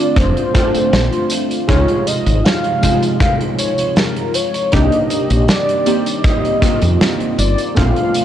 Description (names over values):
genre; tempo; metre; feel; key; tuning
vaporwave; 79 BPM; 4/4; straight; unclear; A4 = 440 Hz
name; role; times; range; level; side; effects
warm velvety synth lead; melody; 0.0-8.2 s; Bb4 to F5; -20 LUFS; equal; chorus, phaser, tape echo
warbly lo-fi synth keys; accompaniment; 0.0-8.2 s; C3 to G4; -19 LUFS; equal; analog chorus, analog delay
warbly tape-like pad; sustained chords; 0.0-8.2 s; C3 to F4; -26 LUFS; left 2 dB; chorus, built-in reverb
woody fretless electric bass; bass; 0.2-7.9 s; F1 to F2; -15 LUFS; equal; none
big rock drum kit; drums; 0.2-8.2 s; hi-hat, snare drum, tambourine; -20 LUFS; right 1 dB; vintage 12-bit sampler grit
kick drum; drums; 0.2-7.9 s; none; -18 LUFS; equal; vintage 12-bit sampler grit
room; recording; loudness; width
little or no reverb; dry, gritty hardware recording, cassette tape; -13 LUFS; side -10 dB against mid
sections
0.0-8.2 A section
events
none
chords
0.0 Bbmaj9 (rootless); 1.7 Dbmaj7; 4.7 Cm9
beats
0.17 0.93 | 1.69 2.45 3.21 3.97 | 4.73 5.49 6.25 7.01 | 7.76